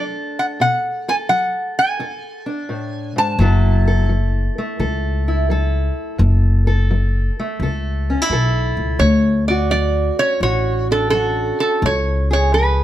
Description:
acoustic country blues, solo or duo; 86 BPM; 4/4; swing 68% on 8ths; F# minor; A4 = 437 Hz
lap resonator guitar; melody; 0.0-4.1, 9.0-12.8 s; A4 to A5; -18 LUFS; right 1 dB
fingerpicked steel-string acoustic guitar; accompaniment; 0.0-12.8 s; F#2 to A4; -23 LUFS; equal
upright bass; bass; 3.4-12.8 s; F#1 to D2; -16 LUFS; left 1 dB
light reverb; -16 LUFS; side -12 dB against mid
0.0-12.8 A section
0.0 Bm7; 3.4 F#m7; 9.0 Dmaj7; 11.8 C#7

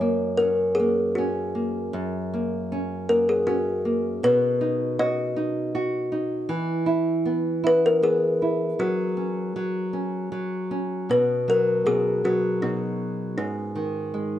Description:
children's music, lullaby; 79 BPM; 3/4; straight; B major; A4 = 439 Hz
kalimba; melody; 0.0-14.4 s; D#4 to D#5; -23 LUFS; left 1 dB; plate reverb
nylon-string guitar; accompaniment; 0.0-14.4 s; F#2 to F#4; -26 LUFS; right 1 dB
moderate studio reverb, RT60 0.6 s; -22 LUFS; side -11 dB against mid
0.0-11.1 A section; 11.1-14.4 B section
0.0 F#; 4.2 B; 6.5 E; 8.8 F#5; 11.1 B; 13.4 G#5

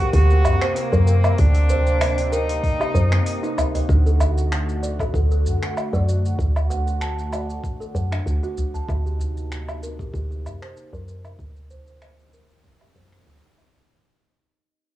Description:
organic downtempo; 96 BPM; 4/4; swing 54% on 16ths; A4 = 440 Hz
bright cello; melody; 0.0-3.6 s; Bb3 to F#4; -27 LUFS; equal; cassette tape, analog delay
warm analog pad; sustained chords; 0.0-13.8 s; C3 to F#4; -31 LUFS; equal; chorus, sidechain pumping
kalimba; arpeggios; 0.0-13.9 s; C4 to A5; -28 LUFS; equal; low-pass filter, analog delay
woody FM bass; bass; 0.0-13.4 s; D2 to F#2; -20 LUFS; equal
deep house drum kit; drums; 0.1-13.9 s; finger snaps, hi-hat, shaker, woodblock; -29 LUFS; equal; overdrive, cassette tape
electronic kick drum; drums; 0.1-13.1 s; -24 LUFS; equal; cassette tape
udu; percussion; 0.4-13.9 s; -27 LUFS; left 1 dB
studio reverb; home recording on cassette, small room ambience; -18 LUFS; side -14 dB against mid
0.0-3.9 A section; 3.9-13.9 B section
break 3.3-3.9; fade-out 3.9-13.9; filter sweep on kalimba 3.9-13.9; filter sweep on analog synth pad 3.9-13.9
0.0 Cm7/D; 3.9 D; 8.9 Cm7/D

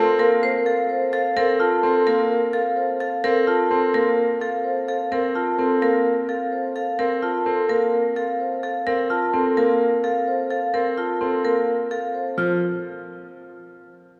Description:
classical, minimalist pattern music; 128 BPM; 4/4; straight; A4 = 442 Hz
vibraphone with soft mallets; melody; 0.0-12.6 s; A4 to A5; -24 LUFS; equal
bright concert grand piano; accompaniment; 0.0-12.6 s; F3 to C4; -30 LUFS; equal
marimba with hard mallets; arpeggios; 0.0-12.6 s; C4 to C5; -26 LUFS; equal
wet cathedral reverb, RT60 4.3 s; recorded in a church or concert hall; -21 LUFS; mono
0.0-12.4 A section; 12.4-14.2 B section
0.0 Bbmaj7(no3); 12.4 F5

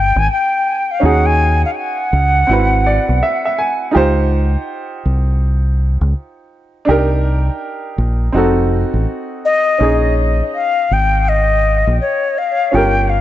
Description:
hip hop; 82 BPM; 4/4; swing 62% on 16ths; A4 = 440 Hz
concert flute; melody; 0.0-3.6, 9.5-13.2 s; Db5 to Ab5; -16 LUFS; left 2 dB; tape echo
warm upright piano; accompaniment; 0.0-13.2 s; C4 to Ab5; -18 LUFS; right 2 dB
deep dub fingered electric bass; bass; 0.0-13.2 s; F1 to Eb2; -15 LUFS; equal
light reverb, small room ambience; echo-heavy mix, nothing above 7.9 kHz; -13 LUFS; side -13 dB against mid
0.0-13.2 A section
upright piano fill 2.5-4.0
0.0 Abmaj9 (rootless); 1.0 Ebm7; 2.5 Ab7alt; 4.0 Dbmaj9#11; 6.9 Cm9; 8.3 F7b9; 9.8 Bbm7

